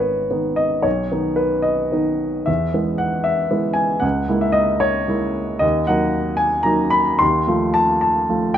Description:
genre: classical, romantic character piece for solo piano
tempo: 75 BPM (dotted quarters)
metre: 6/8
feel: rubato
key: unclear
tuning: A4 = 439 Hz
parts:
  - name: warm grand piano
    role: solo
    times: 0.0-8.6 s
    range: G#1 to C6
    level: -16 LUFS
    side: equal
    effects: none
room: light reverb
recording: close, detailed microphones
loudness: -16 LUFS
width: side -10 dB against mid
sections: 0.0-8.6 A section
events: none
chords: 0.0 G#m; 0.8 B; 2.5 E; 4.0 A#m7b5/C#; 5.6 Ebm; 7.2 F7/Eb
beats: 0.02 | 0.85 1.66 | 2.48 3.26 | 4.03 4.83 | 5.63 6.41 | 7.21 8.03

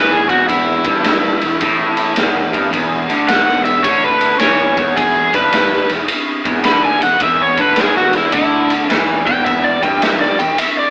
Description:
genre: blues rock power trio and southern rock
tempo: 107 BPM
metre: 4/4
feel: swing 65% on 8ths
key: unclear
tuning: A4 = 440 Hz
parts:
  - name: overdriven slide guitar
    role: melody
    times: 0.0-10.9 s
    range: E4 to B5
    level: -17 LUFS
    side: equal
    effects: none
  - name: tonewheel organ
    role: sustained chords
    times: 0.0-10.9 s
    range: B3 to B4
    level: -30 LUFS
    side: equal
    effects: none
  - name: crunchy overdriven guitar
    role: riff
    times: 0.0-10.5 s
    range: E2 to E3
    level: -20 LUFS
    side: equal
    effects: none
  - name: fuzz fingered electric bass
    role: bass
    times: 0.0-10.6 s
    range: E1 to E2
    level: -28 LUFS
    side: equal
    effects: overdrive
  - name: raw garage drum kit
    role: drums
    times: 0.3-10.8 s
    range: kick drum, ride cymbal, snare drum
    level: -20 LUFS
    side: equal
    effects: none
room: moderate small room reverb, RT60 0.5 s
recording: band playing live in one room, AM radio sound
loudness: -14 LUFS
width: mono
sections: 0.0-10.9 A section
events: electric slide guitar solo 0.0-10.9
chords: 0.0 E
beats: | 0.49 1.05 1.61 2.17 | 2.73 3.29 3.85 4.41 | 4.97 5.54 6.10 6.66 | 7.22 7.78 8.34 8.90 | 9.46 10.02 10.58

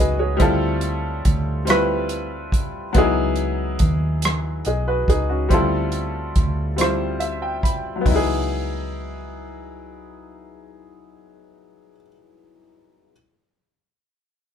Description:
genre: slow six-eight R&B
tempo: 47 BPM (dotted quarters)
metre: 6/8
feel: straight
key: unclear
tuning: A4 = 440 Hz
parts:
  - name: clear grand piano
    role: accompaniment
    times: 0.0-13.1 s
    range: F#3 to B5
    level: -22 LUFS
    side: left 1 dB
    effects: none
  - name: vintage muted fingered electric bass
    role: bass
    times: 0.0-12.0 s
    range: B1 to D#2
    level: -25 LUFS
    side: equal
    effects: none
  - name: warm soul drum kit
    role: drums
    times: 0.4-8.3 s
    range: hi-hat, kick drum, rim click, toms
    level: -21 LUFS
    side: equal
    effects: none
room: light reverb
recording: band playing live in one room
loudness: -19 LUFS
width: side -8 dB against mid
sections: 0.0-8.1 A section; 8.1-10.6 B section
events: grand piano fill 6.8-8.1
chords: 0.4 Dm11; 3.0 C#m11; 5.5 Dm11; 8.1 C#m11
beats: | 0.40 1.67 | 2.95 4.23 | 5.50 6.78 | 8.06 9.33

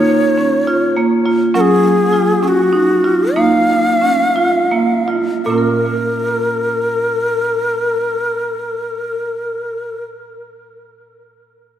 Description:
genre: world meditative, meditative tuned percussion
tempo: 51-69 BPM (dotted quarters)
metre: 6/8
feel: straight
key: Bb minor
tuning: A4 = 438 Hz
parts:
  - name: breathy Native American-style cedar flute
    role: melody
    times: 0.0-10.0 s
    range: Gb4 to F5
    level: -16 LUFS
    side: left 1 dB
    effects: tape echo
  - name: marimba with medium hard mallets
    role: arpeggios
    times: 0.0-10.2 s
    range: Bb2 to Bb4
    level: -15 LUFS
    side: right 2 dB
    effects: tape echo
room: wet lush hall reverb, RT60 2.1 s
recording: none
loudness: -13 LUFS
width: side -10 dB against mid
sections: 0.0-5.5 A section; 5.5-10.2 B section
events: slowing down 1.5-5.5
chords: 0.0 Bbm; 1.5 Gb5; 3.4 Bbm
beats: 0.67 | 1.54 2.43 | 3.36 4.36 | 5.46 6.63 | 7.81 8.98

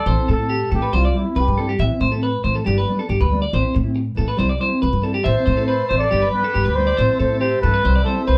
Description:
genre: highlife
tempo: 139 BPM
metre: 4/4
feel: straight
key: A minor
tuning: A4 = 439 Hz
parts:
  - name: breathy trumpet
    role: melody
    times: 0.0-1.7, 5.2-8.4 s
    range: E4 to D5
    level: -23 LUFS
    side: equal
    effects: none
  - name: clean electric guitar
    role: arpeggios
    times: 0.0-8.4 s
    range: G4 to E5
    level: -26 LUFS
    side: equal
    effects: none
  - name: nylon-string guitar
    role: accompaniment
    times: 0.1-8.3 s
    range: E3 to E4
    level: -27 LUFS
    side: equal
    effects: none
  - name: upright bass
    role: bass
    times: 0.1-8.4 s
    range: G1 to A2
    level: -22 LUFS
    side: equal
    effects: none
  - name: combo organ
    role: sustained chords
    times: 5.2-8.4 s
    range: D5 to C6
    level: -37 LUFS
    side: equal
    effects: none
room: moderate studio ambience, RT60 0.5 s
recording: band playing live in one room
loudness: -19 LUFS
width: mono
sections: 0.0-8.4 A section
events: none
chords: 0.1 Am; 0.9 C; 1.8 Am; 2.7 G; 3.5 Am; 4.4 C; 5.3 Am; 6.1 G; 7.0 Am; 7.8 C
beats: | 0.06 0.50 0.93 1.36 | 1.79 2.23 2.66 3.09 | 3.52 3.96 4.39 4.82 | 5.25 5.68 6.12 6.55 | 6.98 7.41 7.85 8.28

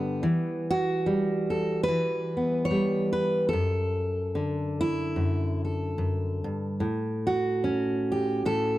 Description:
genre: folk, solo fingerstyle acoustic guitar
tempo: 73 BPM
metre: 4/4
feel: swing 57% on 8ths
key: D major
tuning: A4 = 442 Hz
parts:
  - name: fingerpicked steel-string acoustic guitar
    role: solo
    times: 0.0-8.8 s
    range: F#2 to C#5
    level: -25 LUFS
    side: equal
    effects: none
room: small room ambience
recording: dry, close 1970s-style studio recording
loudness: -25 LUFS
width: side -15 dB against mid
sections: 0.0-8.8 A section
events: none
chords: 0.2 Em; 3.5 D/F#; 6.8 A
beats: | 0.23 1.06 1.88 2.70 | 3.53 4.35 5.17 6.00 | 6.82 7.64 8.46

